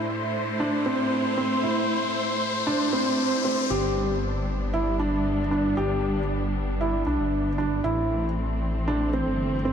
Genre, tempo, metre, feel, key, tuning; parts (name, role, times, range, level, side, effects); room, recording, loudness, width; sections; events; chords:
piano and strings electronica; 116 BPM; 4/4; straight; A4 = 440 Hz
dark studio string section; sustained chords; 0.0-9.7 s; A2 to C5; -29 LUFS; equal; shimmer reverb
riser; sound effects; 0.0-3.7 s; -33 LUFS; left 5 dB
dark upright piano; riff; 0.6-9.7 s; C4 to G4; -26 LUFS; right 1 dB; tape echo, shimmer reverb
dark detuned saw bass; bass; 3.7-9.7 s; G1 to B1; -28 LUFS; left 1 dB; tube saturation
wet huge ambient reverb, RT60 4.9 s; dark, warm production; -23 LUFS; side -8 dB against mid
0.0-3.7 A section; 3.7-9.7 B section
build-up 0.0-3.7; riser 0.0-3.7; drop 3.7-9.7
0.0 Am; 3.7 G; 7.8 Am